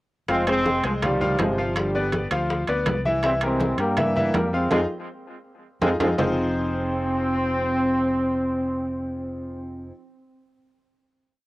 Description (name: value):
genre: latin, salsa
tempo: 163 BPM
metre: 4/4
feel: straight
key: F minor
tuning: A4 = 440 Hz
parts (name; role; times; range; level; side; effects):
- bright trombone section; melody; 0.3-9.9 s; C3 to C4; -24 LUFS; equal; analog delay
- bright concert grand piano; accompaniment; 0.3-9.9 s; E3 to F5; -26 LUFS; left 1 dB; cassette tape
- fingered electric bass; bass; 0.3-9.9 s; F1 to G2; -30 LUFS; equal; none
- bongos; percussion; 0.3-6.3 s; none; -32 LUFS; left 2 dB; none
- congas; percussion; 0.3-6.3 s; none; -31 LUFS; equal; none
- timbales; percussion; 0.3-6.3 s; none; -28 LUFS; right 3 dB; none
room: light reverb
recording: home recording on cassette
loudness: -21 LUFS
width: side -18 dB against mid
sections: 0.3-6.2 A section; 6.2-9.1 final chord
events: band accent 4.7-6.2; drum fill 5.6-6.2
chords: 0.3 Fm7; 1.8 G7; 3.2 C7; 4.7 Fm7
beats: | 0.29 0.66 1.03 1.40 | 1.76 2.13 2.50 2.87 | 3.24 3.61 3.98 4.34 | 4.71 5.08 5.45 5.82 | 6.18 6.55 6.92 7.29 | 7.66 8.03 8.40 8.77